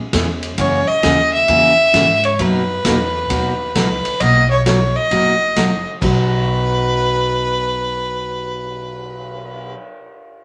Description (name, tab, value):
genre	country, western swing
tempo	132 BPM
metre	4/4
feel	swing 66% on 8ths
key	B major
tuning	A4 = 442 Hz
part	picked steel-string acoustic guitar	accompaniment	0.1-9.8 s	B2 to G#4	-23 LUFS	equal	none
part	upright bass	bass	0.1-9.7 s	F#1 to G#2	-25 LUFS	equal	none
part	swinging big-band drum kit	drums	0.1-9.6 s	crash cymbal, cymbal swell, hi-hat, kick drum, ride cymbal, snare drum	-27 LUFS	equal	none
part	clear fiddle	melody	0.6-9.7 s	B4 to E5	-19 LUFS	equal	none
room	wet studio reverb, RT60 0.8 s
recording	none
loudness	-16 LUFS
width	mono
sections	0.0-4.2 A section; 4.2-6.0 B section; 6.0-9.7 C section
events	none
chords	0.0 C#m7; 0.6 F#7; 2.4 Bmaj7; 6.0 B